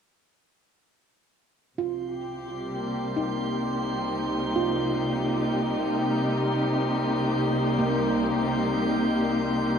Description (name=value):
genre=ambient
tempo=65 BPM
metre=3/4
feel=straight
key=C minor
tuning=A4 = 440 Hz
part: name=dark studio string section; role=sustained chords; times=1.8-9.8 s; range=C3 to G4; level=-25 LUFS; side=left 1 dB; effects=none
part: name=handpan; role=arpeggios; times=1.8-9.0 s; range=Bb3 to F4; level=-32 LUFS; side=right 3 dB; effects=diffuse ambient delay
part: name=bright studio cello section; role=bass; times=1.8-9.8 s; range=C2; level=-42 LUFS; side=equal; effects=none
part: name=drifting glass-harmonics texture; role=texture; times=2.2-9.8 s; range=C5 to C6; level=-34 LUFS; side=right 2 dB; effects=chorus, built-in reverb
room=wet cathedral reverb, RT60 5.4 s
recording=in a vast, echoing space, cassette tape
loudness=-24 LUFS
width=side -7 dB against mid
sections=1.8-9.8 A section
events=fade-in on cello section 1.8-9.8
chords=1.8 Cm7